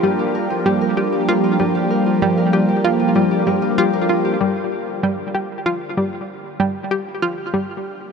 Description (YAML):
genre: ambient, sequencer-driven space music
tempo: 96 BPM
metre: 4/4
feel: straight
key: G minor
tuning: A4 = 440 Hz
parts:
  - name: phased analog pad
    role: sustained chords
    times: 0.0-8.1 s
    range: D3 to G4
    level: -19 LUFS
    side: right 1 dB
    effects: phaser, chorus
  - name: concert harp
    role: arpeggios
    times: 0.0-6.6 s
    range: F4 to Bb4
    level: -25 LUFS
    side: moving between left 8 dB and right 2 dB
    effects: auto-pan, tape echo
  - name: analog pluck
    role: riff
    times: 0.0-7.7 s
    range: G3 to G4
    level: -21 LUFS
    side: equal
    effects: chorus, tape echo
room: wet huge ambient reverb, RT60 8.4 s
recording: nothing above 10.8 kHz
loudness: -16 LUFS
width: side -6 dB against mid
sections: 0.0-4.4 A section; 4.4-8.1 B section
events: none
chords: 0.0 Gm7